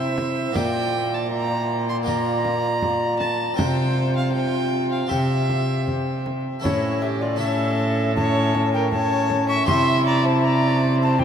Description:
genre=classical, renaissance-style consort dance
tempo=79 BPM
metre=4/4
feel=straight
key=unclear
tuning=A4 = 443 Hz
part: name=alto recorder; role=melody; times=0.0-11.2 s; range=C5 to C#6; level=-26 LUFS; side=left 3 dB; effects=none
part: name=rich violin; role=second line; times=0.0-11.2 s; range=E4 to C6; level=-26 LUFS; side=right 2 dB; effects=none
part: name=clear trombone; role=accompaniment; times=0.0-11.2 s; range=C#4 to G4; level=-26 LUFS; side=equal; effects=none
part: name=harpsichord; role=accompaniment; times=0.0-11.2 s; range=A2 to D5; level=-29 LUFS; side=left 1 dB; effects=none
part: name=rich cello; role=bass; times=0.0-11.2 s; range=A2 to C3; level=-24 LUFS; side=right 1 dB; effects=none
part: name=frame drum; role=percussion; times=0.2-11.2 s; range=none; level=-32 LUFS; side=right 1 dB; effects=none
room=wet cathedral reverb, RT60 6.3 s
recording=in a vast, echoing space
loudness=-19 LUFS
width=side -8 dB against mid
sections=0.0-6.6 A section; 6.6-11.2 A section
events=none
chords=0.0 C; 0.6 Bb; 3.6 Csus4; 5.1 C; 6.6 A; 9.7 C

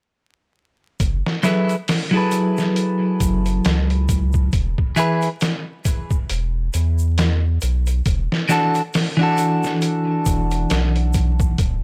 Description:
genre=trip hop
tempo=68 BPM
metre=4/4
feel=swing 57% on 16ths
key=unclear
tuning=A4 = 440 Hz
part: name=soft dub sub bass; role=bass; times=1.0-11.8 s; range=D1 to E2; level=-22 LUFS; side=equal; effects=tube saturation
part: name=trip hop sampler-style drum kit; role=drums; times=1.0-11.8 s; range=hi-hat, kick drum, snare drum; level=-24 LUFS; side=equal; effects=overdrive
part: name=egg shaker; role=percussion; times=1.0-11.8 s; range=none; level=-39 LUFS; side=equal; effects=none
part: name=clean electric guitar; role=accompaniment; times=1.4-11.6 s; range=E3 to B4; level=-21 LUFS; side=equal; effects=harmonic tremolo, tape echo
room=little or no reverb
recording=dry, gritty hardware recording, vinyl crackle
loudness=-20 LUFS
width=mono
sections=1.0-11.8 A section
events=none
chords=1.0 F#m11; 4.5 E5; 8.1 E9sus4

